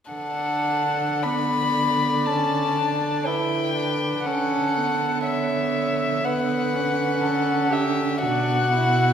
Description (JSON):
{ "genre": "classical, slow romantic movement for string quartet", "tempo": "52-62 BPM", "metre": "4/4", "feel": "rubato", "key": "D major", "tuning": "A4 = 441 Hz", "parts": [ { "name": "warm violin", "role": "melody", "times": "0.1-9.1 s", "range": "E5 to B5", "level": "-24 LUFS", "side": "left 4 dB", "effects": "none" }, { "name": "warm violin", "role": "second line", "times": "0.1-9.1 s", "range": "F#4 to D5", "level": "-28 LUFS", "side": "right 1 dB", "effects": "none" }, { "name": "rich viola", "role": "accompaniment", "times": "0.1-9.1 s", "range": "B3 to E4", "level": "-27 LUFS", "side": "right 3 dB", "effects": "none" }, { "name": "dark cello", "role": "bass", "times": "0.1-9.1 s", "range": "B2 to D3", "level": "-27 LUFS", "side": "right 3 dB", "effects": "none" } ], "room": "wet concert hall reverb, RT60 1.9 s", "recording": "recorded in a church or concert hall", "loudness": "-20 LUFS", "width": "side -8 dB against mid", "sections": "0.1-9.1 A section", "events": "none", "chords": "0.1 D; 4.3 A/D; 8.2 Bm" }